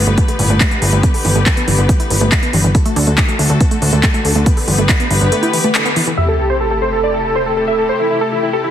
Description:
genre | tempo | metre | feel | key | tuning
uplifting trance | 140 BPM | 4/4 | straight | A dorian | A4 = 442 Hz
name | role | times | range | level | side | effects
clear symphonic string section | sustained chords | 0.0-8.7 s | C3 to B4 | -20 LUFS | left 2 dB | sidechain pumping
wide unison pluck | arpeggios | 0.0-6.1 s | A2 to A4 | -20 LUFS | right 1 dB | cassette tape, sidechain pumping, dub echo
plucky analog bass | bass | 0.0-5.3 s | G1 to D2 | -14 LUFS | equal | sidechain pumping
big-room dance drum kit | drums | 0.1-6.2 s | handclaps, hi-hat | -18 LUFS | equal | none
electronic kick drum | drums | 0.2-5.0 s | none | -14 LUFS | equal | overdrive
dense compressed supersaw | melody | 6.2-8.7 s | E4 to E5 | -17 LUFS | equal | sidechain pumping, low-pass filter, ping-pong delay
warm velvety synth lead | second line | 6.2-8.7 s | G4 to A4 | -18 LUFS | right 1 dB | chorus, dub echo
sub drop | sound effects | 6.2-7.9 s | none | -21 LUFS | equal | none
room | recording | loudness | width
light reverb, digital ambience | heavily compressed radio sound, multiband compression | -12 LUFS | side -10 dB against mid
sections
0.0-6.2 A section; 6.2-8.7 B section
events
band accent 5.7; impact 6.2-7.9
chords
0.0 G; 2.7 D; 4.5 G; 6.2 Am7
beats
0.18 0.61 | 1.03 1.46 1.89 2.32 | 2.75 3.18 3.61 4.03 | 4.46 4.89 5.32 5.75 | 6.18 6.61 7.03 7.46 | 7.89 8.32

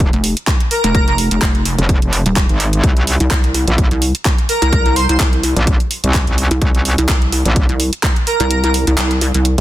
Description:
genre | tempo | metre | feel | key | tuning
bass house | 127 BPM | 4/4 | swing 55% on 16ths | unclear | A4 = 440 Hz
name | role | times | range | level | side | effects
metallic wobble bass | bass | 0.0-9.6 s | Eb1 to C2 | -15 LUFS | equal | chorus, tube saturation, sidechain pumping
electronic kick drum | drums | 0.0-8.1 s | none | -15 LUFS | equal | overdrive
garage drum kit | drums | 0.0-9.6 s | handclaps, hi-hat | -20 LUFS | right 1 dB | overdrive
pulsing pluck wobble bass | bass | 0.1-9.6 s | Eb1 to C2 | -15 LUFS | equal | chorus, sidechain pumping
airy dreamy lead | melody | 0.7-1.1, 4.5-5.2, 8.3-8.7 s | Bb4 to C5 | -18 LUFS | right 1 dB | chorus, digital delay
room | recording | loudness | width
little or no reverb | dense, heavily limited modern master | -12 LUFS | side -14 dB against mid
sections
0.0-9.6 A section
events
kick drops out 8.5-9.6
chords
0.0 N.C.; 2.8 Bbsus2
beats
0.00 0.47 | 0.95 1.42 1.89 2.36 | 2.84 3.31 3.78 4.25 | 4.73 5.20 5.67 6.14 | 6.62 7.09 7.56 8.03 | 8.51 8.98 9.45

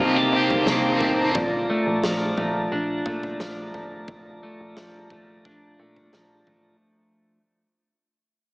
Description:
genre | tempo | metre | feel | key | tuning
dream pop | 88 BPM | 4/4 | straight | unclear | A4 = 440 Hz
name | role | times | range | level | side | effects
overdriven electric guitar | accompaniment | 0.0-1.4 s | C3 to G4 | -25 LUFS | equal | harmonic tremolo, lush chorus
mellow tonewheel organ | sustained chords | 0.0-6.8 s | Eb4 to Bb5 | -26 LUFS | equal | slow rotary speaker
electric guitar at the edge of break-up | arpeggios | 0.0-7.4 s | C3 to G4 | -26 LUFS | equal | wide subtle chorus, tape echo
plucky analog bass | bass | 0.0-6.8 s | A1 to C3 | -32 LUFS | equal | none
huge arena drum kit | drums | 0.5-6.6 s | kick drum, snare drum, toms | -31 LUFS | equal | none
room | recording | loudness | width
moderate scoring stage reverb, RT60 1.9 s, studio reverb | heavily compressed radio sound, multiband compression, small speaker sound | -20 LUFS | side -28 dB against mid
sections
0.0-6.8 A section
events
fade-out 0.0-6.8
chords
0.0 Cm7; 1.4 Bbmaj7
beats
0.67 | 1.35 2.04 2.72 3.40 | 4.08 4.76 5.45 6.13

